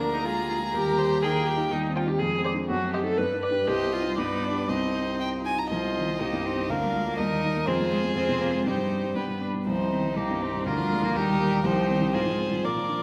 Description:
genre	quick classical-period movement for piano quintet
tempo	122 BPM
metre	2/4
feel	straight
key	C minor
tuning	A4 = 440 Hz
part	warm violin	melody	0.0-13.0 s	G4 to Bb5	-33 LUFS	equal	none
part	rich cello	second line	0.0-13.0 s	Eb3 to Eb4	-35 LUFS	equal	none
part	warm violin	second line	0.0-13.0 s	Eb4 to D5	-35 LUFS	equal	none
part	dark baby grand piano	accompaniment	0.0-13.0 s	C2 to A4	-31 LUFS	equal	none
part	warm viola	accompaniment	0.0-13.0 s	B3 to B4	-33 LUFS	equal	none
room	wet scoring stage reverb, RT60 1.8 s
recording	none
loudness	-26 LUFS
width	mono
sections	0.0-5.7 A section; 5.7-13.0 B section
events	none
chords	0.0 Bb7/D; 0.7 Eb; 1.7 Cm/Eb; 2.2 Dm7b5/F; 2.7 F#dim7; 3.2 G; 3.7 Cm; 4.2 G; 4.7 Cm; 6.7 Bb/D; 7.2 Eb; 7.7 Fm; 8.7 Cm/G; 9.2 G; 9.7 Cm; 10.7 Bb/D; 11.2 Eb; 11.6 Cm; 12.1 Fm/Ab

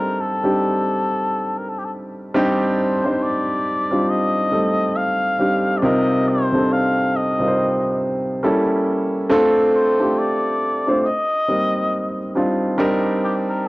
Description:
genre	R&B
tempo	69 BPM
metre	4/4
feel	swing 61% on 16ths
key	C dorian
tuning	A4 = 440 Hz
part	trumpet with cup mute	melody	0.0-13.7 s	G4 to F5	-22 LUFS	left 1 dB	plate reverb
part	warm grand piano	accompaniment	0.0-13.7 s	C3 to A5	-18 LUFS	equal	none
room	moderate small room reverb, RT60 0.6 s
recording	home recording on cassette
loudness	-17 LUFS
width	side -21 dB against mid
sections	0.0-12.8 A section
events	none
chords	0.0 Cm69; 5.8 F13sus4/C; 8.4 A7b9; 9.3 Dm7; 11.0 Cm9; 12.8 Cm7

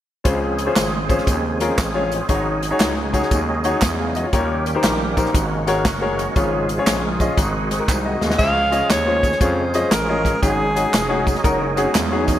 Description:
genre	uptempo gospel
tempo	118 BPM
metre	4/4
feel	swing 66% on 8ths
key	Db major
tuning	A4 = 440 Hz
part	warm upright piano	accompaniment	0.2-12.3 s	Ab2 to F5	-22 LUFS	left 3 dB	none
part	bright tonewheel organ	sustained chords	0.2-12.4 s	Db3 to Ab4	-25 LUFS	right 2 dB	fast rotary speaker, chorus vibrato
part	growling FM bass	bass	0.3-12.4 s	F1 to F2	-25 LUFS	equal	none
part	swinging big-band drum kit	drums	0.3-12.4 s	crash cymbal, hi-hat, kick drum, snare drum	-22 LUFS	equal	none
part	tambourine and handclaps	percussion	0.3-12.4 s	none	-29 LUFS	right 4 dB	none
part	bright alto saxophone	melody	8.4-11.4 s	Ab4 to F5	-20 LUFS	equal	none
part	mellow electric guitar	second line	11.4-12.4 s	Gb3 to Db5	-27 LUFS	right 6 dB	none
room	light reverb, small room ambience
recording	none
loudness	-17 LUFS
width	side -12 dB against mid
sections	0.3-8.4 A section; 8.4-12.4 B section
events	drum fill 7.9-8.4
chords	0.3 Dbmaj7; 2.3 Ab7sus4; 4.3 Eb7; 5.3 Ab9sus4; 6.4 Db/Ab; 7.4 Ab7; 8.4 Dbmaj7; 10.4 Ab7sus4

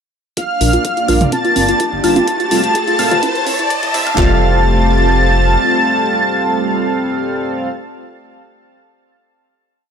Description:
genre	progressive house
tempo	126 BPM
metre	4/4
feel	straight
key	F major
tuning	A4 = 441 Hz
part	expressive synth lead	melody	0.4-7.7 s	F5 to A5	-17 LUFS	left 1 dB	analog chorus, sidechain pumping, ping-pong delay
part	soft supersaw	second line	0.4-7.7 s	F6 to A6	-24 LUFS	right 1 dB	vintage 12-bit sampler grit, sidechain pumping, digital delay
part	supersaw pad	sustained chords	0.4-7.7 s	E3 to D5	-22 LUFS	equal	sidechain pumping
part	soft round pluck	arpeggios	0.4-4.4 s	E4 to F4	-20 LUFS	equal	chorus, sidechain pumping, digital delay
part	electronic hi-hat	drums	0.4-4.2 s	none	-23 LUFS	equal	overdrive, sidechain pumping on hats
part	pop drum kit	drums	0.4-4.3 s	handclaps, kick drum	-21 LUFS	equal	overdrive, high-pass filter on kick, high-pass filter on snare, high-pass filter on room
part	riser	sound effects	1.0-4.2 s	none	-24 LUFS	equal	none
part	backwards swelling texture	texture	0.4-4.2 s	F5 to D6	-33 LUFS	left 1 dB	none
part	chorused polysynth	stabs	0.6-7.7 s	G2 to F5	-20 LUFS	right 2 dB	sidechain pumping, digital delay
part	round analog bass	bass	0.6-5.6 s	F1 to Bb1	-16 LUFS	equal	sidechain pumping
part	electronic woodblock, toms and congas	percussion	1.1-4.2 s	none	-22 LUFS	right 3 dB	sidechain pumping on perc, sidechain pumping on toms
room	moderate digital room reverb, RT60 1.1 s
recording	dark, warm production, high-pass filter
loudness	-12 LUFS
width	side -7 dB against mid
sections	0.4-4.2 build; 4.2-8.0 final chord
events	build-up 0.4-4.2; filter sweep on synth pluck 0.4-4.2; filter sweep on analog polysynth 0.4-4.2; filter sweep 0.4-4.2; riser 1.0-4.2; drum fill 2.3-4.2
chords	0.4 Bb; 2.3 Fadd9; 3.2 Am7; 4.2 Fadd9

